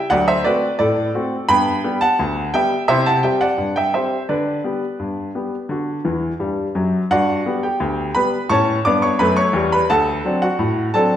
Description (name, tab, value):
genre	ragtime piano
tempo	86 BPM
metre	2/4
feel	straight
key	G major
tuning	A4 = 440 Hz
part	clear grand piano	solo	0.0-11.2 s	D2 to D6	-16 LUFS	equal	none
room	wet recital hall reverb, RT60 1.3 s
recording	recorded in a church or concert hall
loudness	-16 LUFS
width	side -10 dB against mid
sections	0.0-7.1 A section; 7.1-11.2 B section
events	grand piano fill 6.0-7.1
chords	0.1 D7; 1.5 G; 2.9 C; 4.3 G/D; 5.7 D; 7.1 G; 8.5 A7; 9.9 D7